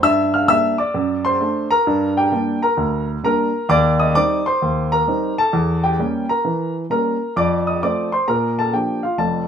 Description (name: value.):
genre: jazz, stride piano.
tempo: 131 BPM.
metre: 4/4.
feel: swing 66% on 8ths.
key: Bb major from 3.7 s.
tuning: A4 = 440 Hz.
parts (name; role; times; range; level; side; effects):
warm baby grand piano; solo; 0.0-9.5 s; F1 to F6; -16 LUFS; equal; none.
room: light reverb.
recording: minimal, uncompressed stereo recording.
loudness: -16 LUFS.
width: side -8 dB against mid.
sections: 0.0-9.5 A section.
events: none.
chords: 0.0 Gm; 0.9 D7/F#; 1.9 Gm; 3.7 Cm/Eb; 5.5 Edim7; 7.4 F7; 8.3 Bb.